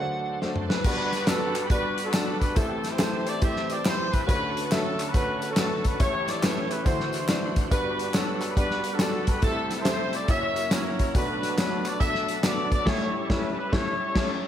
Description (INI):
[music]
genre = uptempo gospel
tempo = 140 BPM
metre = 4/4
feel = swing 64% on 8ths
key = unclear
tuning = A4 = 440 Hz
[part]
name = clear upright piano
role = accompaniment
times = 0.0-14.3 s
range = F#1 to B5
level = -31 LUFS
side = left 1 dB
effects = slapback echo
[part]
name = bright tonewheel organ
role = sustained chords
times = 0.0-14.5 s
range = D3 to C#5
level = -34 LUFS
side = right 1 dB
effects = slow rotary speaker, overdrive, chorus vibrato
[part]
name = warm soul drum kit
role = drums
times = 0.4-14.3 s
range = crash cymbal, hi-hat, kick drum, snare drum, toms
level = -26 LUFS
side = equal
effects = none
[part]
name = warm horn section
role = melody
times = 0.7-14.4 s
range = C4 to E5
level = -28 LUFS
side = equal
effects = slapback echo
[part]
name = tambourine and handclaps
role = percussion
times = 0.9-12.8 s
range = none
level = -39 LUFS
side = equal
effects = none
[sound]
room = moderate lush hall reverb, RT60 1.7 s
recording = big arena sound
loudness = -23 LUFS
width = side -10 dB against mid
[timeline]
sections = 0.8-14.5 A section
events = break 0.0-0.8; drum fill 0.4-0.8; band accent 12.9-14.5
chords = 0.0 D7; 0.8 Gmaj7; 2.6 Am7; 4.3 Dmaj7; 6.0 A7; 6.9 D9; 7.7 Gmaj7; 9.4 C6; 10.3 F#7; 11.2 Bm7; 12.9 A7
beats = 0.42 | 0.85 1.28 1.71 2.14 | 2.57 3.00 3.42 3.85 | 4.28 4.71 5.14 5.57 | 6.00 6.43 6.86 7.29 | 7.72 8.15 8.57 9.01 | 9.43 9.86 10.29 10.72 | 11.15 11.58 12.01 12.44 | 12.87 13.29 13.72 14.15